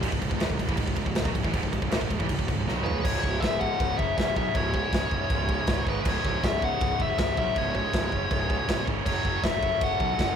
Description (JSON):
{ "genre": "heavy metal", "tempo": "160 BPM", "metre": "4/4", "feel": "straight", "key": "C# minor", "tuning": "A4 = 439 Hz", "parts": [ { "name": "pipe organ, soft reed", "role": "sustained chords", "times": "0.0-10.4 s", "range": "C#3 to A4", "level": "-42 LUFS", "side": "right 2 dB", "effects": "none" }, { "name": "heavy high-gain guitar", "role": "riff", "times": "0.0-10.4 s", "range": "C#2 to F#3", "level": "-32 LUFS", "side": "right 6 dB", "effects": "distortion" }, { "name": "tight distorted guitar", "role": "riff", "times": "0.0-10.4 s", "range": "C#2 to F#3", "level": "-36 LUFS", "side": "left 5 dB", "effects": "distortion" }, { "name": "fuzz fingered electric bass", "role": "bass", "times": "0.0-10.3 s", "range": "C#1 to B1", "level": "-31 LUFS", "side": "equal", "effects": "overdrive" }, { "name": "modern studio drum kit", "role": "drums", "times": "0.0-10.3 s", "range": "china cymbal, crash cymbal, kick drum, snare drum, toms", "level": "-28 LUFS", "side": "equal", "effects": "none" }, { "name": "high-gain lead guitar", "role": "melody", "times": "2.8-10.4 s", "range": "B4 to F#5", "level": "-28 LUFS", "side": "left 3 dB", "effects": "distortion" }, { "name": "high-gain lead guitar", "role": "second line", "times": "2.9-10.3 s", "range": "D4 to C#5", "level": "-42 LUFS", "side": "right 2 dB", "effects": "none" } ], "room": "moderate cathedral reverb, RT60 7.0 s", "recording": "rough rehearsal-room recording", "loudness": "-24 LUFS", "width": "side -8 dB against mid", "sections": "0.0-3.0 A section; 3.0-10.4 B section", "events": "drum fill 2.7-3.0", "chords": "0.0 C#m; 9.1 F#m" }